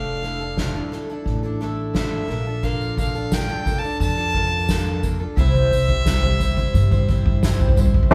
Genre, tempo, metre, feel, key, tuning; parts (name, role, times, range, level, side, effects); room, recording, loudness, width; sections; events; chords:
indie folk with a building arrangement; 88 BPM; 4/4; straight; A4 = 440 Hz
warm fiddle; melody; 0.0-7.4 s; E5 to A5; -30 LUFS; equal
picked twelve-string acoustic guitar; accompaniment; 0.0-8.1 s; C3 to C5; -29 LUFS; equal
upright bass; bass; 0.0-8.1 s; F1 to G2; -25 LUFS; equal
soft-mallet drum kit; drums; 0.2-8.1 s; crash cymbal, kick drum, snare drum; -24 LUFS; equal
tambourine; percussion; 2.6-7.9 s; -46 LUFS; equal
felt-muted upright piano; accompaniment; 8.1 s; F3 to C4; -13 LUFS; equal
moderate studio reverb, RT60 0.6 s; band playing live in one room; -21 LUFS; mono
0.0-8.1 A section
build-up 0.0-8.1; drum fill 0.0-8.1
0.0 Dmadd9/F; 2.3 Bbmaj7; 5.4 C